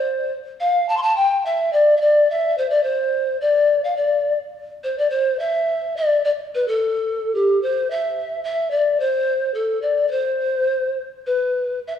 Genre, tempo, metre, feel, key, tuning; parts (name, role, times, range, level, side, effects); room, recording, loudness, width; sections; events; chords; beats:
andean folk; 107 BPM; 2/4; straight; A4 = 441 Hz
mellow polished pan flute; solo; 0.0-11.9 s; G4 to C6; -18 LUFS; left 1 dB
moderate scoring stage reverb, RT60 1.6 s; worn, warbling old tape, cassette tape, warbly pitch drift, studio ambience; -18 LUFS; side -9 dB against mid
0.0-7.9 A section; 7.9-12.0 B section
| 0.07 0.63 | 1.19 1.75 | 2.31 2.87 | 3.43 3.99 | 4.55 5.11 | 5.67 6.22 | 6.79 7.34 | 7.91 8.47 | 9.03 9.59 | 10.15 10.72 | 11.28 11.84